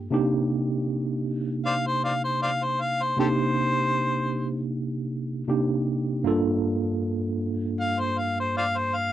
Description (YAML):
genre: blues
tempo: 78 BPM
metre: 4/4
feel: swing 53% on 16ths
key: unclear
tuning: A4 = 440 Hz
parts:
  - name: mellow harmonica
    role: melody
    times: 0.0-9.1 s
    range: G4 to F5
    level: -25 LUFS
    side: left 2 dB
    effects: overdrive
  - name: tine electric piano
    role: accompaniment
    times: 0.0-9.1 s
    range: G2 to A4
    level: -25 LUFS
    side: right 2 dB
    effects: overdrive, fast stereo tremolo
room: light reverb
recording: dry, close 1970s-style studio recording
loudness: -23 LUFS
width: side -12 dB against mid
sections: 0.0-9.1 A section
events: harmonica solo 0.0-9.1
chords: 0.1 Cm7; 6.2 Gm7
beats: | 0.12 0.88 1.65 2.42 | 3.18 3.95 4.71 5.48 | 6.24 7.01 7.78 8.54